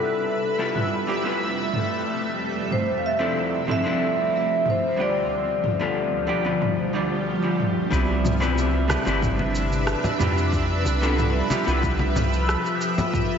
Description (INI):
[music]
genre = sunset chillout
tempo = 92 BPM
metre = 4/4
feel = straight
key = unclear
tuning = A4 = 440 Hz
[part]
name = vibraphone with soft mallets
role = melody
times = 0.0-7.2 s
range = A4 to F5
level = -26 LUFS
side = equal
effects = ping-pong delay
[part]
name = vintage hollow-body jazz guitar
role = accompaniment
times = 0.0-13.1 s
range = D3 to D5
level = -26 LUFS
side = equal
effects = auto-pan, ping-pong delay
[part]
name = shimmering ambient pad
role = sustained chords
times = 0.0-13.4 s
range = D2 to E5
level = -26 LUFS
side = equal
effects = chorus, built-in reverb, phaser
[part]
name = deep house drum kit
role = drums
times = 0.8-13.3 s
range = cabasa, rim click, toms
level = -29 LUFS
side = right 1 dB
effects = none
[part]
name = round analog bass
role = bass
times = 7.9-12.6 s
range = G1 to F2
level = -24 LUFS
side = equal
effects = none
[part]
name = electronic kick drum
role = drums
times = 7.9-13.3 s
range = none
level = -28 LUFS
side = equal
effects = none
[part]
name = congas and bongos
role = percussion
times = 8.2-13.1 s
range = none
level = -31 LUFS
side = left 2 dB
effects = none
[sound]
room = wet lush hall reverb, RT60 2.2 s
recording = dreamy mix soaked in reverb, nothing above 7.7 kHz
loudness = -21 LUFS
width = side -7 dB against mid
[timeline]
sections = 0.0-7.9 A section; 7.9-13.4 B section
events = none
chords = 0.1 Fmaj9#11; 2.7 Dm9; 5.3 G9/D; 7.9 Cmaj9; 10.5 Fmaj9#11